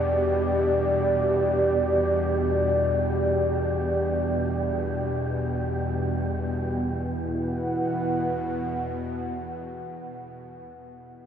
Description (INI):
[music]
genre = dark ambient drone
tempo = free time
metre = none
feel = none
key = E minor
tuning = A4 = 440 Hz
[part]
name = dark analog pad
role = sustained chords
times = 0.0-10.4 s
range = E4 to F#5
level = -26 LUFS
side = equal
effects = chorus
[part]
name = bowed-like drone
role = drone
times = 0.0-10.1 s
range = E2 to B2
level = -28 LUFS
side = equal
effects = built-in reverb
[part]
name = wind-like tuned noise texture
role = texture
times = 0.0-6.9 s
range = G4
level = -37 LUFS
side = right 1 dB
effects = built-in reverb
[sound]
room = wet huge ambient reverb, RT60 7.8 s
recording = dreamy mix soaked in reverb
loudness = -23 LUFS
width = side -8 dB against mid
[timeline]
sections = 0.0-6.8 A section; 6.8-10.5 B section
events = none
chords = 0.0 Em7; 6.8 E5